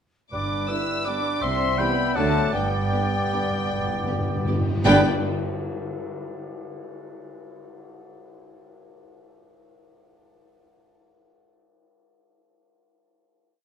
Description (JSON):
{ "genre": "classical, orchestral ballroom waltz", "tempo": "159 BPM", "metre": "3/4", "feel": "uneven beats, rubato", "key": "G major", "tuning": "A4 = 440 Hz", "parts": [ { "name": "dark chamber violin section", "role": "melody", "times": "0.3-5.1 s", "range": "G5 to E6", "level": "-31 LUFS", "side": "left 3 dB", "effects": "none" }, { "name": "clear clarinet", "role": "second line", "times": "0.3-5.0 s", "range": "D4 to G5", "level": "-32 LUFS", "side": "left 3 dB", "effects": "none" }, { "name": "clear cor anglais", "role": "second line", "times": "0.3-5.0 s", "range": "B4 to E5", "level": "-33 LUFS", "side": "right 3 dB", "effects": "none" }, { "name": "mellow concert flute", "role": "second line", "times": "0.3-5.1 s", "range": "G5 to E6", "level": "-31 LUFS", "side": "right 1 dB", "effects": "none" }, { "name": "warm bassoon", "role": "accompaniment", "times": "0.3-5.0 s", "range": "F#3 to B3", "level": "-30 LUFS", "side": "right 1 dB", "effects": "none" }, { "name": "mellow French horn section", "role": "sustained chords", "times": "0.3-5.0 s", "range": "G3 to E4", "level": "-30 LUFS", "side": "left 3 dB", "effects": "none" }, { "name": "warm symphonic cello section", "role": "bass", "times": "0.3-5.1 s", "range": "G2 to D3", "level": "-31 LUFS", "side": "right 3 dB", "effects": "none" }, { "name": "warm symphonic double bass section", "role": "bass", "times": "0.3-5.1 s", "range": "G1 to D2", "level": "-30 LUFS", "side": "right 3 dB", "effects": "none" }, { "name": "timpani", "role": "percussion", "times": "0.3-5.0 s", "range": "G2", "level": "-30 LUFS", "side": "left 1 dB", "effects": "none" }, { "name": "rich studio violin section", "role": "second line", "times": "0.7-5.1 s", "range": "F#4 to G5", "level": "-35 LUFS", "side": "left 4 dB", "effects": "none" }, { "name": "dark symphonic viola section", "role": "accompaniment", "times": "0.7-5.1 s", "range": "E3 to E4", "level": "-29 LUFS", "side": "equal", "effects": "none" }, { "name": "mellow trombone section", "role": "sustained chords", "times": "0.7-5.0 s", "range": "D3 to B3", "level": "-33 LUFS", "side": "right 3 dB", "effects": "none" }, { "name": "cymbal swell and tam-tam", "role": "percussion", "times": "2.5-6.3 s", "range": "none", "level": "-36 LUFS", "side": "left 3 dB", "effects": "none" } ], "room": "wet recital hall reverb, RT60 1.4 s", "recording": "none", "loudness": "-21 LUFS", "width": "side -8 dB against mid", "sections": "0.3-4.9 A section; 4.9-6.0 final chord", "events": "timpani fill 2.5-4.9; band accent 4.9-5.2", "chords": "0.3 G; 1.4 C; 2.2 D; 2.5 G" }